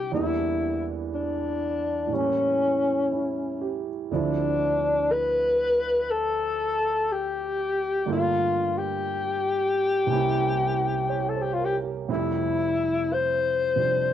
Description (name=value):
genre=jazz ballad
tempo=60 BPM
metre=4/4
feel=swing 66% on 8ths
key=unclear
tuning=A4 = 438 Hz
part: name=breathy alto saxophone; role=melody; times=0.0-14.1 s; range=C#4 to C5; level=-24 LUFS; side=left 3 dB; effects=cassette tape, plate reverb
part: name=warm concert grand piano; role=accompaniment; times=0.0-14.1 s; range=C2 to Db5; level=-29 LUFS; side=right 7 dB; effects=cassette tape
room=wet booth ambience, RT60 0.2 s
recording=home recording on cassette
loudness=-23 LUFS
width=side -10 dB against mid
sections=0.0-14.1 A section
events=none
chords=0.1 Em7b5; 2.1 A7b9; 4.1 Dm9; 8.1 Gm9; 10.1 C7b9; 12.1 Fmaj9